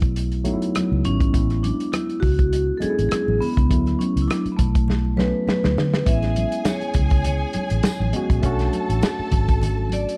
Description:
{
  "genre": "lush 1970s-style soul",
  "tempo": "101 BPM",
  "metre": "4/4",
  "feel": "swing 54% on 16ths",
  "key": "A major",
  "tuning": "A4 = 440 Hz",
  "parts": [
    { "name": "tine electric piano", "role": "accompaniment", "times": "0.0-10.2 s", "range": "F#3 to F#4", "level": "-28 LUFS", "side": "equal", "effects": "overdrive" },
    { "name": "vintage muted fingered electric bass", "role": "bass", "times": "0.0-10.0 s", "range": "G#1 to D3", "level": "-25 LUFS", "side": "equal", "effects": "none" },
    { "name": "warm soul drum kit", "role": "drums", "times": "0.0-10.2 s", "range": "hi-hat, kick drum, rim click, snare drum", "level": "-24 LUFS", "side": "equal", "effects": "none" },
    { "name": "congas", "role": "percussion", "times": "0.3-10.1 s", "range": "none", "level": "-35 LUFS", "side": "equal", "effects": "none" },
    { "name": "vibraphone with medium hard mallets", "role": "melody", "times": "1.1-10.2 s", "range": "A3 to E5", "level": "-28 LUFS", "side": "equal", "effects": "none" },
    { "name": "warm studio string section", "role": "second line", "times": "6.1-10.2 s", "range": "G#4 to A5", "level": "-33 LUFS", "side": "equal", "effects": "none" },
    { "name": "tambourine", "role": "percussion", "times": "6.7-9.2 s", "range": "none", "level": "-43 LUFS", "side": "equal", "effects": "none" }
  ],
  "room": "small room ambience",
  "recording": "dark, warm production",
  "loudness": "-21 LUFS",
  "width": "mono",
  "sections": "0.0-6.1 A section; 6.1-10.2 B section",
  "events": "drum fill 4.9-6.1",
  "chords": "0.0 D69 (rootless); 1.3 Amaj7; 3.7 D69; 6.1 Amaj7; 8.4 Bm7",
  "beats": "0.16 0.75 | 1.34 1.93 2.52 3.12 | 3.71 4.30 4.89 5.49 | 6.08 6.67 7.26 7.85 | 8.44 9.04 9.63"
}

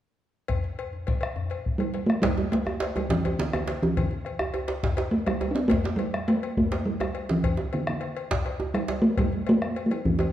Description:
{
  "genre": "west african traditional, West African drum ensemble",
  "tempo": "138 BPM (dotted quarters)",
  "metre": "12/8",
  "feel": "straight",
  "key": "unclear",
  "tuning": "A4 = 442 Hz",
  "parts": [
    { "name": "bombo", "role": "percussion", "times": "0.5-10.2 s", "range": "none", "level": "-32 LUFS", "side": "left 1 dB", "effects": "none" },
    { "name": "cowbell", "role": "percussion", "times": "0.5-10.3 s", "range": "none", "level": "-36 LUFS", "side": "left 6 dB", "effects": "none" },
    { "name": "djembe", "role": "percussion", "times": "0.5-10.3 s", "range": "none", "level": "-35 LUFS", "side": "left 3 dB", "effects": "none" },
    { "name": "talking drum", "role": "melody", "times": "1.8-10.3 s", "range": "D3 to D4", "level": "-25 LUFS", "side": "right 1 dB", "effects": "none" },
    { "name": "djembe", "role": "percussion", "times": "2.2-10.3 s", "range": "none", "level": "-30 LUFS", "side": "right 3 dB", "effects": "none" }
  ],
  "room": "wet recital hall reverb, RT60 1.4 s",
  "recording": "worn, warbling old tape, cassette tape, warbly pitch drift",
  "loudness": "-24 LUFS",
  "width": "side -12 dB against mid",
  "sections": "0.5-2.2 A section; 2.2-10.3 B section",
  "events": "none",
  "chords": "none",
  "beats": "| 0.49 0.92 1.36 1.79 | 2.23 2.66 3.10 3.53 | 3.96 4.40 4.83 5.27 | 5.70 6.14 6.57 7.01 | 7.44 7.88 8.31 8.75 | 9.18 9.62 10.05"
}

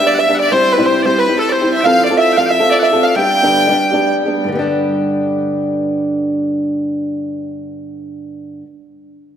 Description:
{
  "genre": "celtic folk, Celtic hornpipe",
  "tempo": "182 BPM",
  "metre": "4/4",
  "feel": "swing 61% on 8ths",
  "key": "G mixolydian",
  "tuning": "A4 = 440 Hz",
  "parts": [
    { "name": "clear fiddle", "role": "melody", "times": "0.0-4.1 s", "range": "A4 to G5", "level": "-15 LUFS", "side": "equal", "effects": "tape echo" },
    { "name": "loud bright bagpipes", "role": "second line", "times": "0.0-4.2 s", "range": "A4 to G5", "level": "-22 LUFS", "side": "left 2 dB", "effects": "tape echo" },
    { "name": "open-back banjo", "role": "second line", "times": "0.0-4.1 s", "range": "A4 to G5", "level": "-19 LUFS", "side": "right 6 dB", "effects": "none" },
    { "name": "fingerpicked old ladder-braced acoustic guitar", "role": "accompaniment", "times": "0.0-8.7 s", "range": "G2 to A4", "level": "-16 LUFS", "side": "left 1 dB", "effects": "none" }
  ],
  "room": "wet church reverb, RT60 3.2 s",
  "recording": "dreamy mix soaked in reverb",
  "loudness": "-12 LUFS",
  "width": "side -9 dB against mid",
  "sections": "0.0-4.5 A section; 4.5-7.1 B section",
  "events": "none",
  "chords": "0.0 G; 0.5 C; 1.8 F; 3.2 G",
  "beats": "0.19 | 0.52 0.85 1.18 1.51 | 1.84 2.17 2.50 2.83 | 3.16 3.49 3.82 4.15 | 4.49 4.82 5.15 5.48 | 5.81 6.14 6.47 6.80"
}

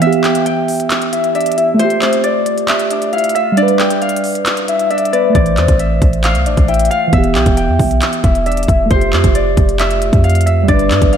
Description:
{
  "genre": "hip hop, trap",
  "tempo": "135 BPM",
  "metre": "4/4",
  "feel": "half-time",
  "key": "unclear",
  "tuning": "A4 = 442 Hz",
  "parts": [
    { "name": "Celtic harp", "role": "melody", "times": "0.0-11.2 s", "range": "C5 to G5", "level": "-18 LUFS", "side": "left 1 dB", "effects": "ping-pong delay" },
    { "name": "muted felt-like synth keys", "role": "accompaniment", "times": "0.0-11.2 s", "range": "E3 to C5", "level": "-17 LUFS", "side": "right 4 dB", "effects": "chorus" },
    { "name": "trap drum kit", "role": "drums", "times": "0.0-11.2 s", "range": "handclaps, hi-hat, kick drum", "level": "-16 LUFS", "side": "equal", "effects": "none" },
    { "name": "soft octave-layered synth lead", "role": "second line", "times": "0.2-8.9 s", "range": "B4 to G5", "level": "-19 LUFS", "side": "left 5 dB", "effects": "chorus, ping-pong delay" },
    { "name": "clean 808-style bass", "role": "bass", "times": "5.3-11.2 s", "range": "E1 to G2", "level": "-15 LUFS", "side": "equal", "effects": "none" },
    { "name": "riser", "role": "sound effects", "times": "10.4-11.2 s", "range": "none", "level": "barely audible", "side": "none", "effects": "none" }
  ],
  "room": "moderate lush hall reverb, RT60 1.8 s, digital ambience",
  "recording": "dreamy mix soaked in reverb",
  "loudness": "-11 LUFS",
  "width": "side -8 dB against mid",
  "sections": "0.0-11.2 A section",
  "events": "break 0.0-5.4",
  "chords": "0.0 Em; 1.8 Fadd9; 3.6 G; 5.4 Am; 7.1 Em; 8.9 Fadd9",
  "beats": "| 0.02 0.46 0.91 1.35 | 1.79 2.24 2.68 3.13 | 3.57 4.02 4.46 4.91 | 5.35 5.79 6.24 6.68 | 7.13 7.57 8.02 8.46 | 8.91 9.35 9.79 10.24 | 10.68 11.13"
}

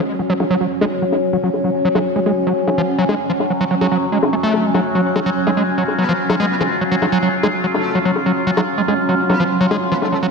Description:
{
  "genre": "psychedelic trance",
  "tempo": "145 BPM",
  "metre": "4/4",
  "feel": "straight",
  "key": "unclear",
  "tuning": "A4 = 437 Hz",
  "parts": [
    { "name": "overtone-sweeping drone", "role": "sustained chords", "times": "0.0-10.3 s", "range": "F#3 to E#4", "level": "-20 LUFS", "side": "left 2 dB", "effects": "chorus, built-in reverb" },
    { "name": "granular cloud pad", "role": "texture", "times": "0.0-10.3 s", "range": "F#3 to C#4", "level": "-22 LUFS", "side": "right 3 dB", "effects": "built-in reverb" },
    { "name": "overdriven acid bass", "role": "riff", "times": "0.2-10.3 s", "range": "E#3 to A3", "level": "-19 LUFS", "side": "moving between left 2 dB and right 4 dB", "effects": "distortion, auto-pan, tape echo" },
    { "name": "bongos", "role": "drums", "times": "0.4-10.1 s", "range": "none", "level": "-22 LUFS", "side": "left 4 dB", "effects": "low-pass filter on hats, low-pass filter on perc, low-pass filter on cymbals, low-pass filter on snare, low-pass filter on room" },
    { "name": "metallic wobble bass", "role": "second line", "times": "6.0-10.2 s", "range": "A3 to B3", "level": "-28 LUFS", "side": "left 2 dB", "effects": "ensemble chorus, high-pass filter, tape echo" }
  ],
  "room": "wet lush hall reverb, RT60 1.6 s, digital ambience",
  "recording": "none",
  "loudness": "-15 LUFS",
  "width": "side -4 dB against mid",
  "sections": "0.0-10.3 A section",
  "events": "none",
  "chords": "0.0 F#5",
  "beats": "0.19 0.60 1.02 | 1.43 1.85 2.26 2.67 | 3.09 3.50 3.92 4.33 | 4.74 5.16 5.57 5.99 | 6.40 6.81 7.23 7.64 | 8.05 8.47 8.88 9.29 | 9.71 10.12"
}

